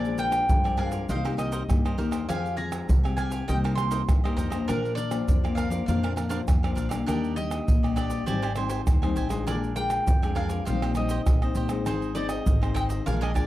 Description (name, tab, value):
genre	samba and choro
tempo	100 BPM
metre	4/4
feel	straight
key	unclear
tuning	A4 = 441 Hz
part	mandolin	melody	0.0-13.5 s	Bb4 to C6	-32 LUFS	equal	none
part	cavaquinho	accompaniment	0.0-13.5 s	D4 to Ab5	-36 LUFS	right 4 dB	none
part	nylon-string guitar	accompaniment	0.0-13.5 s	F2 to G4	-30 LUFS	left 4 dB	none
part	upright bass	bass	0.0-13.5 s	Ab1 to G2	-30 LUFS	equal	none
part	egg shaker, pandeiro, tamborim and surdo	percussion	0.0-13.5 s	none	-27 LUFS	right 1 dB	none
room	little or no reverb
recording	dry, close 1970s-style studio recording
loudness	-23 LUFS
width	side -15 dB against mid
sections	0.0-13.5 A section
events	none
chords	0.0 Bb7; 1.1 Cm7; 2.3 Fmadd9; 3.5 Cm7; 4.7 Bb; 7.1 Ebmaj7; 8.3 Abmaj7; 9.5 Bb7; 10.7 Eb6/Bb; 11.9 Ab